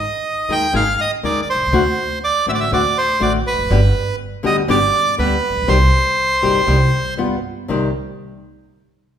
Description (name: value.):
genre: tango.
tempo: 121 BPM.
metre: 4/4.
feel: rubato.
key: C minor.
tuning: A4 = 440 Hz.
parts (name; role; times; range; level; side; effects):
bandoneon; melody; 0.0-7.1 s; B4 to G5; -17 LUFS; right 2 dB; none.
flamenco guitar; accompaniment; 0.5-7.9 s; C3 to Ab4; -21 LUFS; left 3 dB; none.
upright bass; bass; 0.5-7.9 s; E1 to Eb2; -20 LUFS; equal; none.
room: wet recital hall reverb, RT60 1.4 s.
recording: recorded in a church or concert hall.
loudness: -15 LUFS.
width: side -9 dB against mid.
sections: 0.0-7.7 A section; 7.7-9.2 B section.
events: none.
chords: 0.0 Ab5; 1.7 D7; 3.7 G; 5.7 Cm; 7.2 G7; 7.7 Cm.